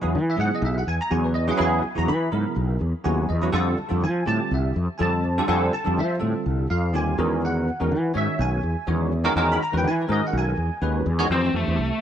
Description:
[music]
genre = electric jazz fusion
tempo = 124 BPM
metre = 4/4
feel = swing 56% on 16ths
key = unclear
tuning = A4 = 441 Hz
[part]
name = barky tine electric piano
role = accompaniment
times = 0.0-11.8 s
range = Db3 to B5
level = -24 LUFS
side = right 1 dB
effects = ensemble chorus
[part]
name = fretless electric bass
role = bass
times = 0.0-11.9 s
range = B1 to F3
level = -23 LUFS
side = equal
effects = analog chorus
[part]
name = lead guitar through a small cranked amp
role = melody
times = 11.3-12.0 s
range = A3 to C4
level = -24 LUFS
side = left 1 dB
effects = overdrive
[sound]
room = light reverb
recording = none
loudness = -21 LUFS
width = side -9 dB against mid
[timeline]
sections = 0.0-11.3 A section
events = tine electric piano fill 2.8-3.5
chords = 0.0 Emaj9; 3.5 Fadd9; 7.2 Emaj9; 11.3 Fmaj9

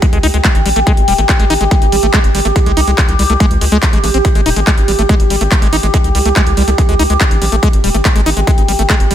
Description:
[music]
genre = psychedelic trance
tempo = 142 BPM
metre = 4/4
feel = straight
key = Ab major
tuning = A4 = 445 Hz
[part]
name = overtone-sweeping drone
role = sustained chords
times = 0.0-9.1 s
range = G4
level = -17 LUFS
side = equal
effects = chorus, built-in reverb, phaser, sidechain pumping
[part]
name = liquid acid bass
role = riff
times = 0.0-9.1 s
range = G3 to Eb4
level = -18 LUFS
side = moving between left 4 dB and right 4 dB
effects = chorus, auto-pan, sidechain pumping, digital delay
[part]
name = big-room dance drum kit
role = drums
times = 0.0-9.1 s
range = handclaps, hi-hat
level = -19 LUFS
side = equal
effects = overdrive, studio reverb
[part]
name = electronic kick drum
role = drums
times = 0.0-9.0 s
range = none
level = -12 LUFS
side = equal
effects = overdrive, studio reverb
[part]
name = round analog bass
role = bass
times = 0.1-9.1 s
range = Eb1 to Db2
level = -14 LUFS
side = equal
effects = none
[sound]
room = little or no reverb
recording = none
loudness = -9 LUFS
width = side -10 dB against mid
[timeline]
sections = 0.0-9.1 A section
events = none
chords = 0.0 Ab5

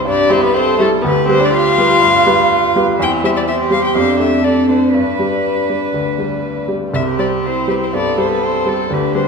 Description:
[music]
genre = quick classical-period movement for piano quartet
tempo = 122 BPM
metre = 4/4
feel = straight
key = C major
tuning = A4 = 437 Hz
[part]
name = warm violin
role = second line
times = 0.0-9.3 s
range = A3 to F4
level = -19 LUFS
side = left 3 dB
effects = none
[part]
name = clear baby grand piano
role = accompaniment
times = 0.0-9.3 s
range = C2 to D5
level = -16 LUFS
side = equal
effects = none
[part]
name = rich violin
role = melody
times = 0.1-9.3 s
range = A4 to G5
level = -19 LUFS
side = left 5 dB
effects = none
[part]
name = clear cello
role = second line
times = 0.1-9.3 s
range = E4 to B4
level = -19 LUFS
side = right 8 dB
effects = none
[sound]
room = wet scoring stage reverb, RT60 2.0 s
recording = minimal, uncompressed stereo recording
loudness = -12 LUFS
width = side -5 dB against mid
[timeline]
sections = 0.0-9.3 A section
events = none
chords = 0.0 C; 1.0 G7/D; 3.0 C/E; 4.0 Dm/F; 5.0 G; 6.9 C

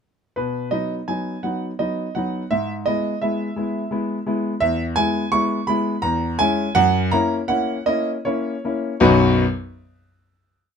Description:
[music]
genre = classical-period piano sonatina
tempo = 76-86 BPM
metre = 3/4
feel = rubato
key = B major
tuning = A4 = 440 Hz
[part]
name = clear grand piano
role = solo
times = 0.4-9.4 s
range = B1 to C#6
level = -19 LUFS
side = equal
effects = none
[sound]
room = little or no reverb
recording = close, detailed microphones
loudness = -19 LUFS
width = side -6 dB against mid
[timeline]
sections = 0.4-9.0 A section; 9.0-10.8 final chord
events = none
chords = 0.4 B; 2.5 E/G#; 4.6 E; 6.0 C#m/E; 6.8 F#7; 9.0 B

